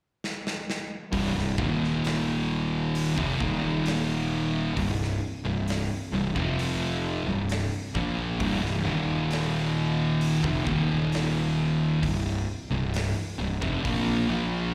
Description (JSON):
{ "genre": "stoner and doom metal", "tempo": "66 BPM", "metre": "4/4", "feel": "straight", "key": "C minor", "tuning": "A4 = 440 Hz", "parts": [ { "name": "big rock drum kit", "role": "drums", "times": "0.2-14.1 s", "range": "hi-hat, kick drum, snare drum", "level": "-38 LUFS", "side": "equal", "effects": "none" }, { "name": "fuzz guitar", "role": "riff", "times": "1.1-14.7 s", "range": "C2 to Bb3", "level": "-35 LUFS", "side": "equal", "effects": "distortion, slapback echo" }, { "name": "thick fuzz guitar", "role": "riff", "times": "1.1-14.7 s", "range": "C2 to Bb3", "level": "-37 LUFS", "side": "equal", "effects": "none" }, { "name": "thick fuzz guitar", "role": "riff", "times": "1.1-14.7 s", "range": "C2 to Bb3", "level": "-31 LUFS", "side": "equal", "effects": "distortion" }, { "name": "fuzz fingered electric bass", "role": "bass", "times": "1.1-14.7 s", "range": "C1 to Bb1", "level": "-33 LUFS", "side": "equal", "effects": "overdrive, tube saturation" } ], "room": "light reverb", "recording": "live gig heard through the venue's PA, recital hall reverb", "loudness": "-27 LUFS", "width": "mono", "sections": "0.0-1.1 A section; 1.1-14.7 B section", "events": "drum fill 0.2-1.1", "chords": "0.0 N.C.; 1.1 C5; 1.6 Eb5; 3.2 F5; 3.4 Eb5; 4.8 C5; 6.4 F5; 7.3 C5; 8.9 Eb5; 10.4 F5; 10.7 Eb5; 12.0 C5" }